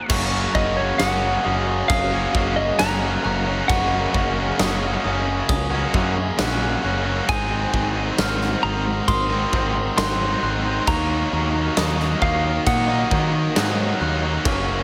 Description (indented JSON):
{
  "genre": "post-rock",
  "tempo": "67 BPM",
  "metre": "4/4",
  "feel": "straight",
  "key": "Gb lydian",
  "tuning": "A4 = 440 Hz",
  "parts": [
    { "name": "clean lap steel guitar", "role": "melody", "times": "0.0-14.0 s", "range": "Db5 to C6", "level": "-28 LUFS", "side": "equal", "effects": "analog delay" },
    { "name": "dark studio string section", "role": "sustained chords", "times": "0.0-14.8 s", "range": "Eb3 to Gb5", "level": "-35 LUFS", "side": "equal", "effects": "none" },
    { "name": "glockenspiel with soft plastic mallets", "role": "arpeggios", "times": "0.0-14.8 s", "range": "Db6 to Gb6", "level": "-33 LUFS", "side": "equal", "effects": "analog delay" },
    { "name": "biting overdriven guitar", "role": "riff", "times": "0.0-14.8 s", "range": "Gb2 to Eb4", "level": "-28 LUFS", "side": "equal", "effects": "spring reverb" },
    { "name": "tight distorted guitar", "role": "riff", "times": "0.0-14.8 s", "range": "Gb2 to Gb4", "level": "-29 LUFS", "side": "equal", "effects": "distortion" },
    { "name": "growling picked electric bass", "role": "bass", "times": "0.1-14.8 s", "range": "Gb1 to Eb3", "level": "-28 LUFS", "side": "equal", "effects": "overdrive" },
    { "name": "huge arena drum kit", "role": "drums", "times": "0.1-14.7 s", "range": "crash cymbal, kick drum, snare drum", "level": "-28 LUFS", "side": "equal", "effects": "none" }
  ],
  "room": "light reverb, small room ambience",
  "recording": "none",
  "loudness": "-21 LUFS",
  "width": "mono",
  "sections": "0.1-14.8 A section",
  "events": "none",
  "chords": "0.1 Gb6; 7.3 Ab7; 10.9 Ebm7",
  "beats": "| 0.10 1.00 1.90 2.80 | 3.70 4.59 5.49 6.39 | 7.29 8.19 9.09 9.98 | 10.88 11.77 12.67 13.56 | 14.45"
}